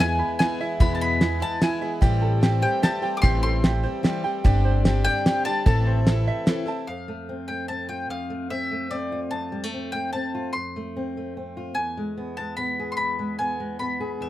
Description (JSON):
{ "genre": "indie folk with a building arrangement", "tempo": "148 BPM", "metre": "3/4", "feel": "straight", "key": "unclear", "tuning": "A4 = 444 Hz", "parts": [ { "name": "mandolin", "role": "melody", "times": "0.0-14.3 s", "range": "D5 to D6", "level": "-27 LUFS", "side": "left 2 dB", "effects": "none" }, { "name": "picked plugged-in steel-string acoustic guitar", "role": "accompaniment", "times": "0.0-6.9 s", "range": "E2 to A4", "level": "-29 LUFS", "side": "left 7 dB", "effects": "none" }, { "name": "pedal harmonium", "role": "sustained chords", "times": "0.0-6.9 s", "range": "C3 to G#4", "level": "-36 LUFS", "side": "right 1 dB", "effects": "none" }, { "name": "tenor ukulele", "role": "arpeggios", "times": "0.0-6.9 s", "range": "E4 to A5", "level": "-29 LUFS", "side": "right 7 dB", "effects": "analog delay" }, { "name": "upright bass", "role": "bass", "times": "0.0-6.3 s", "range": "G1 to E2", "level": "-23 LUFS", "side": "equal", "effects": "none" }, { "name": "cloth-damped thuddy drum kit", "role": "drums", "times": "0.0-6.6 s", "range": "hi-hat, kick drum, snare drum", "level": "-20 LUFS", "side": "equal", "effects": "none" }, { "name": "fingerpicked steel-string acoustic guitar", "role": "accompaniment", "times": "6.9-14.3 s", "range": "E2 to G#4", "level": "-30 LUFS", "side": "equal", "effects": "none" } ], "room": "light reverb", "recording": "none", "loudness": "-22 LUFS", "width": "side -14 dB against mid", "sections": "0.0-6.9 A section; 6.9-14.3 B section", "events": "none", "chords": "0.0 E; 2.0 Am7; 4.4 Gsus4; 5.7 Am; 6.9 F; 11.8 E" }